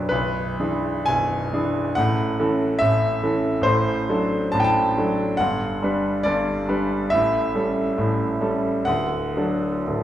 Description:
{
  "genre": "classical, romantic nocturne for solo piano",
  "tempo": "58-72 BPM",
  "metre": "4/4",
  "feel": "rubato",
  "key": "unclear",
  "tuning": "A4 = 440 Hz",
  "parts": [
    { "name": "clear concert grand piano", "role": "solo", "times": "0.0-10.0 s", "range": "B0 to A5", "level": "-20 LUFS", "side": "equal", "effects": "none" }
  ],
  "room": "wet large studio reverb, RT60 1.2 s",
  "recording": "heard from further back in the room",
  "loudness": "-20 LUFS",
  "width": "side -12 dB against mid",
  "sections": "0.0-10.0 A section",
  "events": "none",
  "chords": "0.1 E7/B; 2.0 A; 3.7 D7/A; 5.4 Gmaj7; 7.1 A7; 8.9 D"
}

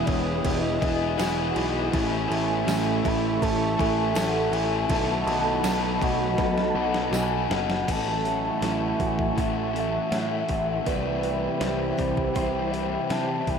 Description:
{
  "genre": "rock, shoegaze and dream pop",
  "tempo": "81 BPM",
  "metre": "4/4",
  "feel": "straight",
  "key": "unclear",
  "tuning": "A4 = 441 Hz",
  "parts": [
    { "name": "pure breathy sine lead", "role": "melody", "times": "0.0-13.6 s", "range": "C5 to B5", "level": "-30 LUFS", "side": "equal", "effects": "chorus, diffuse ambient delay" },
    { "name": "dark analog pad", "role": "sustained chords", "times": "0.0-13.6 s", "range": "A3 to D#6", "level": "-30 LUFS", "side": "right 1 dB", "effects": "chorus" },
    { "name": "picked twelve-string acoustic guitar", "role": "arpeggios", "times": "0.0-13.6 s", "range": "E4 to C5", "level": "-34 LUFS", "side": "right 7 dB", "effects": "ensemble chorus, diffuse ambient delay" },
    { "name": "overdriven semi-hollow guitar", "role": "riff", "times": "0.0-13.6 s", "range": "A2 to A4", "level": "-29 LUFS", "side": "left 9 dB", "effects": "lush chorus" },
    { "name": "twelve-string electric guitar", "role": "riff", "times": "0.0-13.6 s", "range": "E2 to G#4", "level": "-32 LUFS", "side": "right 8 dB", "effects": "reverse reverb" },
    { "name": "picked electric bass", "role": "bass", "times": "0.0-13.6 s", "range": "E1 to C3", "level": "-31 LUFS", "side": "equal", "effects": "none" },
    { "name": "crisp 8-bit digital drum machine", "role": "drums", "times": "0.1-13.6 s", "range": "crash cymbal, hi-hat, kick drum, snare drum", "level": "-31 LUFS", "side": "equal", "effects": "overdrive" },
    { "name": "tambourine", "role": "percussion", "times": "1.2-7.3 s", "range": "none", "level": "-42 LUFS", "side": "right 9 dB", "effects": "none" }
  ],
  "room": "wet huge ambient reverb, RT60 7.8 s",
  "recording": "dreamy mix soaked in reverb",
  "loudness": "-22 LUFS",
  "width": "side -6 dB against mid",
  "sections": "0.0-7.9 A section; 7.9-13.6 B section",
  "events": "drum fill 6.4-7.9",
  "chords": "0.0 Emaj7; 1.9 Amaj7; 4.9 B7; 7.9 A6; 10.9 Cmaj7"
}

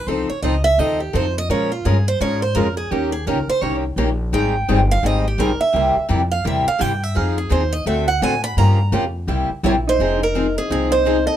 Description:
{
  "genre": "acoustic string swing (jazz manouche)",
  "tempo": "169 BPM",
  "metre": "4/4",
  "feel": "swing 61% on 8ths",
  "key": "F minor",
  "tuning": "A4 = 440 Hz",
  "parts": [
    { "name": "picked steel-string acoustic guitar", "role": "melody", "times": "0.0-11.4 s", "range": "F4 to B5", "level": "-21 LUFS", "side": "right 4 dB", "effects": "none" },
    { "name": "upright bass", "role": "bass", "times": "0.0-11.3 s", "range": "F1 to Bb2", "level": "-21 LUFS", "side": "equal", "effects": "none" },
    { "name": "picked steel-string acoustic guitar", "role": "accompaniment", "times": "0.1-11.2 s", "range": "C3 to Bb4", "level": "-23 LUFS", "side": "left 5 dB", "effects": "none" },
    { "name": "picked steel-string acoustic guitar", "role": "accompaniment", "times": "0.1-11.2 s", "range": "C3 to Bb4", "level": "-26 LUFS", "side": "right 7 dB", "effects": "none" },
    { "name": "concert harp", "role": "second line", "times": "9.6-11.4 s", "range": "C4 to A4", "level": "-22 LUFS", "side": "left 2 dB", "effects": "none" }
  ],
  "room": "light reverb",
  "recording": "minimal, uncompressed stereo recording",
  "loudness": "-16 LUFS",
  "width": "side -10 dB against mid",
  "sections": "0.0-10.0 A section; 10.0-11.4 B section",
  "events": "steel-string acoustic guitar solo 0.0-10.0",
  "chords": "0.1 F7; 1.5 Bbm7; 2.9 Eb7; 4.3 Abmaj7; 5.7 C7; 7.2 Fm7; 7.9 D7; 8.6 Gm7b5; 9.3 C7; 10.0 Fm7"
}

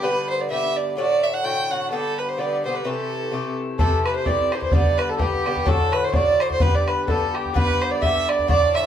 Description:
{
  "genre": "celtic folk, Celtic polka",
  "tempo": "128 BPM",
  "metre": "2/4",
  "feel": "swing 56% on 8ths",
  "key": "unclear",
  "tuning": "A4 = 439 Hz",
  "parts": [
    { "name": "dark fiddle", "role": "melody", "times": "0.0-8.9 s", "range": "G4 to G5", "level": "-22 LUFS", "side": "right 4 dB", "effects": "none" },
    { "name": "Irish bouzouki", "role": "accompaniment", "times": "0.0-8.9 s", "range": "G2 to G4", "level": "-26 LUFS", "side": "left 3 dB", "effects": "none" },
    { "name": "accordion", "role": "second line", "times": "3.8-8.9 s", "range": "G4 to E5", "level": "-26 LUFS", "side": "left 5 dB", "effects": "none" },
    { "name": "bodhran", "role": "percussion", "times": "3.8-8.8 s", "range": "none", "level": "-22 LUFS", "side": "equal", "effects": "none" }
  ],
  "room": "wet small room ambience, RT60 0.5 s",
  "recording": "heard from further back in the room",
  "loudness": "-19 LUFS",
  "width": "side -9 dB against mid",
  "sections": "0.0-3.8 A section; 3.8-8.9 A section",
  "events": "none",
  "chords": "0.0 G; 1.0 D; 1.9 G; 2.9 Am7; 4.7 G; 5.7 D; 6.6 G"
}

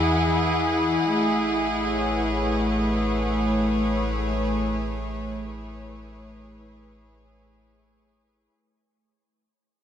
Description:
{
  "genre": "ambient",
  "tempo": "free time",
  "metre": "none",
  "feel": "none",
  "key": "unclear",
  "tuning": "A4 = 435 Hz",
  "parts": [
    { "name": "rich chamber string section", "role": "sustained chords", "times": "0.0-8.5 s", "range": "E3 to F#5", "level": "-23 LUFS", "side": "equal", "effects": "shimmer reverb" },
    { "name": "warm sub bass", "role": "bass", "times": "0.0-8.5 s", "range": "A1 to E2", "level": "-31 LUFS", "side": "equal", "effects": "none" }
  ],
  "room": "wet huge ambient reverb, RT60 7.1 s",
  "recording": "none",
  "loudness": "-22 LUFS",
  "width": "side -9 dB against mid",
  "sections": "0.0-8.5 A section",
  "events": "fade-out 0.0-8.5",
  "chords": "0.0 Emaj7; 1.0 Amaj7"
}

